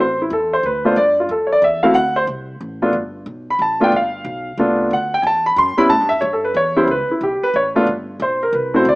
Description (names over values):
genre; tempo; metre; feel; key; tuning
jazz; 182 BPM; 3/4; swing 64% on 8ths; unclear; A4 = 440 Hz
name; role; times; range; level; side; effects
warm concert grand piano; melody; 0.0-9.0 s; G3 to C6; -14 LUFS; equal; plate reverb
upright bass; bass; 0.0-9.0 s; G1 to A2; -30 LUFS; equal; none
room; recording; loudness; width
wet club reverb, RT60 0.5 s; small speaker sound; -15 LUFS; side -22 dB against mid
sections
0.0-9.0 A section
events
none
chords
0.0 D7sus2; 1.0 Gsus2; 1.9 D5; 2.9 G9; 4.9 Dadd9; 5.9 A9; 7.9 G